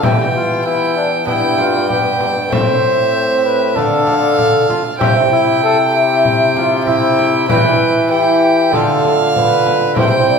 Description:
classical, renaissance-style consort dance; 97 BPM; 4/4; straight; D dorian; A4 = 441 Hz
mellow cornet; melody; 0.0-10.4 s; D4 to D5; -17 LUFS; left 3 dB
rich violin; second line; 0.0-10.4 s; E5 to G5; -18 LUFS; right 4 dB
lute; accompaniment; 0.0-10.4 s; G2 to E5; -21 LUFS; right 5 dB
mellow bassoon; accompaniment; 0.0-10.4 s; B3 to F4; -19 LUFS; left 2 dB
brilliant trombone; bass; 0.0-10.4 s; G2 to E3; -20 LUFS; equal
frame drum; percussion; 0.0-10.3 s; -21 LUFS; left 2 dB
wet recital hall reverb, RT60 1.6 s; heard from further back in the room; -11 LUFS; side -5 dB against mid
0.0-10.4 A section
0.0 Em; 1.3 G; 2.5 Am; 3.8 Dm; 5.0 C; 7.5 Em; 8.7 Dm

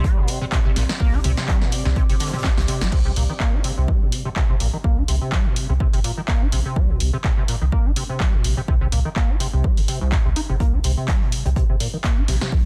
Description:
acid house; 125 BPM; 4/4; swing 55% on 16ths; C minor; A4 = 440 Hz
liquid acid bass; riff; 0.0-12.7 s; C2 to Eb4; -29 LUFS; equal; overdrive, analog chorus, cassette tape, sidechain pumping, tape echo
electronic kick drum; drums; 0.0-12.6 s; -23 LUFS; equal
open jazz drum kit; drums; 0.0-2.9, 10.6-12.6 s; hi-hat, snare drum; -42 LUFS; equal
deep dark ambient pad; texture; 0.0-3.0 s; C4 to D6; -37 LUFS; equal; chorus, built-in reverb, sidechain pumping
warm sub bass; bass; 0.2-12.7 s; G1 to C2; -24 LUFS; equal; sidechain pumping
punchy analog drum machine; drums; 0.3-12.5 s; crash cymbal, handclaps, hi-hat, snare drum, toms; -30 LUFS; equal
little or no reverb; dense, heavily limited modern master; -20 LUFS; mono
0.0-2.9 A section; 2.9-12.7 B section
drop 0.0-2.9; drum fill 2.4-2.9
0.0 C5

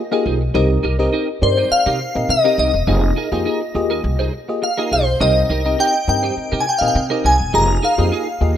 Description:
funk; 103 BPM; 4/4; straight; C minor; A4 = 442 Hz
FM electric piano with auto-pan; accompaniment; 0.0-8.6 s; Bb3 to Eb5; -22 LUFS; left 3 dB; phaser
clean electric guitar; riff; 0.1-8.4 s; Eb4 to C5; -25 LUFS; right 6 dB; ensemble chorus
upright bass; bass; 0.3-8.6 s; E1 to C3; -19 LUFS; equal
shimmering bell with halo; melody; 1.4-8.6 s; C5 to Bb5; -18 LUFS; left 1 dB; ensemble chorus
light reverb, digital ambience; rough home demo mix; -15 LUFS; side -10 dB against mid
0.0-8.6 A section
0.0 Fm11; 0.5 Cm7; 2.9 Fm11; 5.2 Cm7; 7.5 Fm11

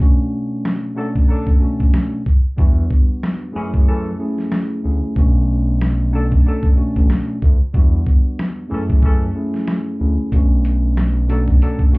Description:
hip hop, boom-bap hip-hop; 93 BPM; 4/4; swing 56% on 16ths; B dorian; A4 = 440 Hz
mellow tine electric piano; accompaniment; 0.0-12.0 s; E2 to G#4; -22 LUFS; equal; slow stereo tremolo, high-pass filter, low-pass filter
boom bap sampler-style drum kit; drums; 0.0-12.0 s; hi-hat, kick drum, rim click, snare drum; -14 LUFS; equal
dark saxophone section; stabs; 1.0-11.8 s; E3 to A4; -29 LUFS; left 2 dB; high-pass filter, low-pass filter, digital delay
smooth synth bass; bass; 2.6-11.6 s; A1 to F#2; -17 LUFS; equal
little or no reverb; heard muffled through a wall, club ambience, EQ; -14 LUFS; side -25 dB against mid
0.0-12.0 A section
break 0.0-10.3
0.0 Bm9; 2.6 Em9; 3.5 F#m9; 5.2 Bm9; 7.7 Em9; 8.7 F#m9; 10.3 Bm9

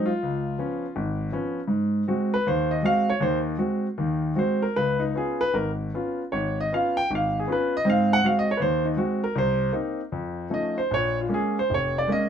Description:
solo jazz; 157 BPM; 4/4; swing 65% on 8ths, rubato; Ab major; A4 = 439 Hz
warm concert grand piano; solo; 0.0-12.3 s; F1 to G5; -22 LUFS; equal
light reverb; minimal, uncompressed stereo recording; -22 LUFS; side -8 dB against mid
0.0-12.3 A section
grand piano solo 0.0-12.3
0.2 Db7; 1.7 Ab7; 4.8 Db7; 7.9 Ab7; 9.4 Cm7; 10.1 Faug7; 10.9 Bbm7

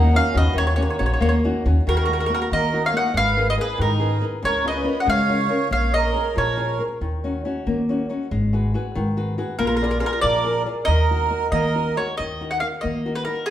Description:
italian folk, Italian serenade; 93 BPM (dotted quarters); 6/8; rubato; Eb minor; A4 = 441 Hz
mandolin; melody; 0.0-6.8, 9.6-13.5 s; Ab4 to Gb5; -23 LUFS; equal
accordion; second line; 0.0-6.8, 9.6-12.0 s; Bb3 to Eb5; -26 LUFS; right 6 dB; light tremolo tuning
flamenco guitar; accompaniment; 0.0-13.5 s; Db3 to D5; -25 LUFS; left 2 dB
upright bass; bass; 0.0-13.3 s; Ab1 to Eb3; -23 LUFS; equal
wet large studio reverb, RT60 1.3 s; band playing live in one room; -19 LUFS; side -11 dB against mid
0.0-1.9 A section; 1.9-12.2 B section; 12.2-13.5 B section
0.0 Ebm7; 1.9 Ebm; 3.2 Abmadd9; 4.4 Db6; 5.7 Bbm7; 7.0 Ebm7; 8.3 Abm7; 9.6 Bb7; 10.9 Ebm

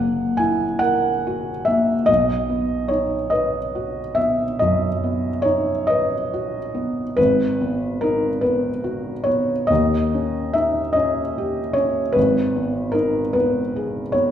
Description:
classical, romantic nocturne for solo piano; 45-52 BPM (dotted quarters); 12/8; rubato; B major; A4 = 440 Hz
felt-muted upright piano; solo; 0.0-14.3 s; F#1 to G#5; -18 LUFS; equal
wet recital hall reverb, RT60 1.7 s; recorded in a church or concert hall; -18 LUFS; side -10 dB against mid
0.0-14.3 A section
0.0 F#7; 2.1 B; 7.2 G#m7; 9.7 D#7; 12.2 G#m

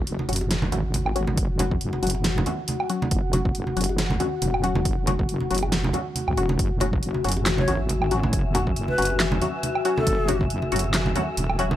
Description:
deep dubstep; 138 BPM; 4/4; swing 56% on 16ths, half-time; A4 = 440 Hz
dark analog pad; sustained chords; 0.1-11.8 s; F#4 to G#5; -31 LUFS; left 5 dB; chorus
wobble bass; bass; 0.0-11.8 s; E1 to C#2; -26 LUFS; equal; chorus
dubstep drum kit; drums; 0.1-11.7 s; handclaps, hi-hat, snare drum, woodblock; -27 LUFS; right 1 dB; overdrive
congas and bongos; percussion; 0.2-11.8 s; -29 LUFS; right 2 dB
filtered dub chord stab; stabs; 0.3-11.8 s; F#3 to F#4; -29 LUFS; left 3 dB; phaser, dub echo
electronic kick drum; drums; 1.4-10.5 s; -27 LUFS; equal; overdrive
wind-like tuned noise texture; texture; 7.3-11.8 s; E5; -35 LUFS; left 2 dB; built-in reverb
breathy bright low ney; melody; 7.6-10.4 s; A4 to C#5; -30 LUFS; equal; dub echo
little or no reverb; dry, gritty hardware recording; -21 LUFS; side -12 dB against mid
0.0-11.8 A section
0.0 F#5

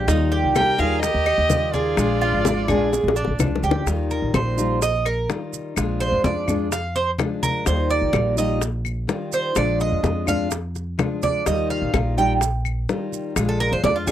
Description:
latin, Cuban son and guajira; 126 BPM; 4/4; straight; Eb major; A4 = 439 Hz
fingerpicked steel-string acoustic guitar; accompaniment; 0.0-14.1 s; Eb3 to F4; -25 LUFS; left 4 dB
Cuban tres; arpeggios; 0.0-14.1 s; D4 to G5; -23 LUFS; right 4 dB
upright bass; bass; 0.0-14.1 s; Ab1 to F2; -24 LUFS; equal
bongos; percussion; 0.1-14.1 s; -27 LUFS; left 7 dB
congas; percussion; 0.1-14.1 s; -28 LUFS; left 1 dB
maracas; percussion; 0.1-14.1 s; -32 LUFS; right 20 dB
dark violin; melody; 0.6-3.4 s; D5 to G5; -24 LUFS; left 2 dB
clear trumpet; second line; 0.6-3.4 s; F4 to Bb4; -29 LUFS; right 14 dB
claves; percussion; 0.6-14.1 s; -32 LUFS; left 18 dB
little or no reverb; dry, close 1970s-style studio recording; -19 LUFS; side -11 dB against mid
0.0-3.9 A section; 3.9-14.1 B section
drum fill 2.9-3.9; Cuban tres solo 3.9-14.1
0.1 Ebadd9; 2.0 Bb7; 3.9 Ebadd9; 5.8 Bb7; 7.7 Ebadd9; 9.6 Bb7; 11.5 Ebadd9; 13.4 Bb7

